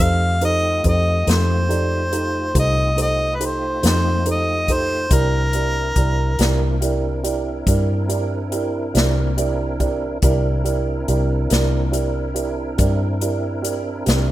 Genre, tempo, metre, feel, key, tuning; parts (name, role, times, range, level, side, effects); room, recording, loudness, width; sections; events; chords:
slow blues; 47 BPM (dotted quarters); 12/8; straight; C mixolydian; A4 = 440 Hz
clear harmonica; melody; 0.0-6.8 s; Bb4 to F5; -22 LUFS; equal; overdrive
dark grand piano; accompaniment; 0.0-14.3 s; Eb4 to D5; -24 LUFS; right 5 dB
tonewheel organ; sustained chords; 0.0-14.3 s; A3 to Bb4; -29 LUFS; right 1 dB; slow rotary speaker, chorus vibrato
vintage muted fingered electric bass; bass; 0.0-14.3 s; C2 to G2; -20 LUFS; equal
swinging big-band drum kit; drums; 0.4-14.3 s; hi-hat, kick drum, snare drum; -22 LUFS; left 1 dB
small room ambience; rough home demo mix; -17 LUFS; side -14 dB against mid
0.0-14.3 A section
grand piano fill 14.1
0.0 F9; 5.1 C9